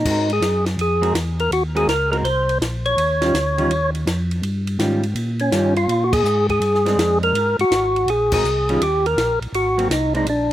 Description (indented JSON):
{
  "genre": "soul jazz organ trio",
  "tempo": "164 BPM",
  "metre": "4/4",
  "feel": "swing 66% on 8ths",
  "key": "unclear",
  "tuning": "A4 = 440 Hz",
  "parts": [
    { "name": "percussive tonewheel organ", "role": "melody", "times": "0.0-10.5 s", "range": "Db4 to Db5", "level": "-18 LUFS", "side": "equal", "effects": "slow rotary speaker, overdrive" },
    { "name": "mellow tonewheel organ", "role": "bass", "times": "0.0-10.5 s", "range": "Ab1 to Bb2", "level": "-23 LUFS", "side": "equal", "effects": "chorus vibrato, slow rotary speaker" },
    { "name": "vintage hollow-body jazz guitar", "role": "accompaniment", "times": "0.1-10.3 s", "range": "Eb3 to Bb4", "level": "-24 LUFS", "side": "right 1 dB", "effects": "none" },
    { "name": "compact cocktail drum kit", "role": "drums", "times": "0.1-10.5 s", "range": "crash cymbal, hi-hat, kick drum, ride cymbal, snare drum", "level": "-27 LUFS", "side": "equal", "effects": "none" }
  ],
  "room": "little or no reverb",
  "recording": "recorded outdoors, with no room sound",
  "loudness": "-17 LUFS",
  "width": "side -13 dB against mid",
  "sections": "0.0-10.5 A section",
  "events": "band accent 6.1, 8.3",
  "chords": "0.0 Ab9; 3.0 Eb9; 5.9 Bb9; 7.3 Ab9; 8.8 Eb5; 9.5 Ab9",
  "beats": "| 0.05 0.41 0.78 1.14 | 1.51 1.88 2.24 2.60 | 2.97 3.33 3.70 4.06 | 4.43 4.79 5.16 5.52 | 5.88 6.25 6.61 6.98 | 7.34 7.71 8.07 8.44 | 8.80 9.17 9.53 9.90 | 10.26"
}